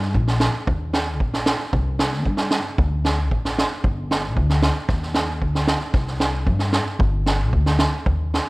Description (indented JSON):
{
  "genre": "klezmer",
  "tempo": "114 BPM",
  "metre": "2/4",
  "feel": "straight",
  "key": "G minor",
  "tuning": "A4 = 440 Hz",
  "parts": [
    { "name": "upright bass", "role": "bass", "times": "0.0-8.4 s", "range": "G1 to G2", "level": "-22 LUFS", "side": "left 1 dB", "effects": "none" },
    { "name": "street-band drum kit", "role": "drums", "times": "0.0-8.5 s", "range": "kick drum, snare drum", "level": "-21 LUFS", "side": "right 1 dB", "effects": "none" }
  ],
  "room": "light reverb",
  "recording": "none",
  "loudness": "-19 LUFS",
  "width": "side -23 dB against mid",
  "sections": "0.0-8.1 A section",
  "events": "none",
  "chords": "none"
}